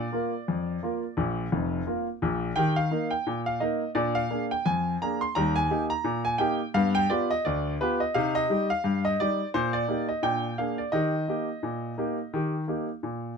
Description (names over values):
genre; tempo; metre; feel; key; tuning
ragtime piano; 86 BPM; 2/4; swing 58% on 16ths; Eb major; A4 = 441 Hz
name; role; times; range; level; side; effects
clear grand piano; solo; 0.0-13.3 s; F1 to C6; -25 LUFS; equal; none
room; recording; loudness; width
light reverb; close, detailed microphones; -25 LUFS; side -6 dB against mid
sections
0.0-13.4 A section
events
none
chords
0.0 Bb; 2.6 Eb; 4.0 Bb7; 5.4 Eb; 6.8 G7; 8.1 Cm; 9.5 Eb/Bb; 10.2 Bb7; 10.9 Eb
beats
0.47 | 1.17 1.87 | 2.57 3.27 | 3.97 4.66 | 5.36 6.06 | 6.76 7.45 | 8.15 8.84 | 9.54 10.23 | 10.93 11.63 | 12.33 13.03